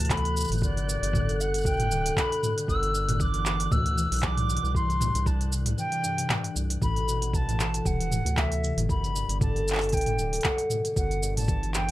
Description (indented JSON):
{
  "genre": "folktronica",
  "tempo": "116 BPM",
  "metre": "4/4",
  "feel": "swing 56% on 16ths",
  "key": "A dorian",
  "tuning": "A4 = 440 Hz",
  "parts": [
    { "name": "silver concert flute", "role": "melody", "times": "0.0-11.9 s", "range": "D5 to E6", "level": "-32 LUFS", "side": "equal", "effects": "digital delay" },
    { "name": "concert harp", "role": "arpeggios", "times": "0.0-11.9 s", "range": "F#2 to E4", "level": "-30 LUFS", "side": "left 1 dB", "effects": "none" },
    { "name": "round analog bass", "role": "bass", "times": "0.0-11.9 s", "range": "D1 to D2", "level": "-29 LUFS", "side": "equal", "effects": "none" },
    { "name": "organic electronic drum kit", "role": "drums", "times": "0.0-11.9 s", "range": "handclaps, hi-hat, shaker, toms", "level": "-30 LUFS", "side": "equal", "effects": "none" },
    { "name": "flickering grainy texture", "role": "texture", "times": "0.0-6.8 s", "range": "F#6", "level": "-42 LUFS", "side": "equal", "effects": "built-in reverb" },
    { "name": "electronic kick drum", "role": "drums", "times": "0.1-11.6 s", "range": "none", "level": "-28 LUFS", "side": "equal", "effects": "none" }
  ],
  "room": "light reverb",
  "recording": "none",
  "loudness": "-24 LUFS",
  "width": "side -15 dB against mid",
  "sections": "0.0-6.8 A section; 6.8-11.9 A section",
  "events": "break 5.8-6.8",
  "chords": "0.0 Amadd9; 0.6 Gmaj7; 2.7 Emadd9/G; 4.8 C; 6.8 Amadd9; 8.9 Gmaj7; 11.0 Emadd9/G",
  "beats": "0.10 | 0.61 1.13 1.65 2.17 | 2.68 3.20 3.72 4.24 | 4.75 5.27 5.79 6.30 | 6.82 7.34 7.86 8.37 | 8.89 9.41 9.93 10.44 | 10.96 11.48"
}